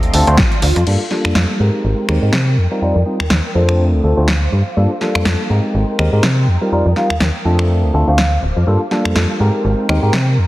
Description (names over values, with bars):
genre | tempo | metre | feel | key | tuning
filtered disco house | 123 BPM | 4/4 | swing 56% on 16ths | G minor | A4 = 440 Hz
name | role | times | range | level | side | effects
bell-like tine electric piano | accompaniment | 0.0-10.1 s | G3 to C5 | -18 LUFS | equal | phaser, sidechain pumping, low-pass filter
phased string machine | sustained chords | 0.0-10.5 s | F4 to Eb6 | -27 LUFS | equal | ensemble chorus, phaser, sidechain pumping, low-pass filter
slap-like FM bass | bass | 0.0-10.5 s | D1 to C3 | -14 LUFS | equal | sidechain pumping, low-pass filter
punchy analog drum machine | drums | 0.0-10.2 s | crash cymbal, finger snaps, hi-hat, snare drum | -20 LUFS | equal | sidechain pumping on hats, sidechain pumping on cymbals
electronic kick drum | drums | 0.4-0.5 s | none | -16 LUFS | equal | none
hollow concert flute | melody | 2.8-8.4 s | C5 to F5 | -23 LUFS | equal | vintage 12-bit sampler grit, sidechain pumping, low-pass filter, dub echo
room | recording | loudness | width
light reverb, digital ambience | heavily compressed radio sound | -12 LUFS | side -17 dB against mid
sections
0.9-10.5 A section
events
none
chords
0.0 Dm7; 0.9 Gm9; 1.6 Abmaj9; 2.6 F9sus4; 3.8 Dm7; 4.8 Gm9; 5.5 Abmaj9; 6.5 F9sus4; 7.7 Dm7; 8.7 Gm9; 9.4 Abmaj9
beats
0.38 | 0.87 1.35 1.84 2.33 | 2.82 3.31 3.79 4.28 | 4.77 5.26 5.75 6.23 | 6.72 7.21 7.70 8.18 | 8.67 9.16 9.65 10.14